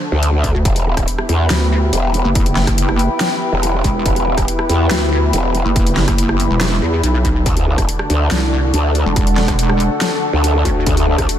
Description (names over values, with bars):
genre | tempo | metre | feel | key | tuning
heavy wobble dubstep | 141 BPM | 4/4 | half-time | E minor | A4 = 440 Hz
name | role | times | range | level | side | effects
rich studio string section | sustained chords | 0.0-11.4 s | D3 to B5 | -24 LUFS | equal | sidechain pumping, low-pass filter
warbly tape-like pad | texture | 0.0-11.4 s | D4 to G5 | -22 LUFS | left 1 dB | chorus, built-in reverb, sidechain pumping
growl bass | bass | 0.1-11.3 s | E1 to E2 | -16 LUFS | equal | chorus, overdrive
dubstep drum kit | drums | 0.2-11.4 s | hi-hat, rim click, snare drum | -22 LUFS | left 1 dB | none
electronic kick drum | drums | 0.4-11.3 s | none | -18 LUFS | equal | distortion
pulsing pluck wobble bass | bass | 0.5-10.8 s | E1 to E2 | -16 LUFS | equal | chorus, overdrive
room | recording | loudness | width
light reverb, digital ambience | none | -13 LUFS | side -10 dB against mid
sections
0.0-11.4 A section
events
none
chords
0.0 D; 0.7 Em; 7.5 D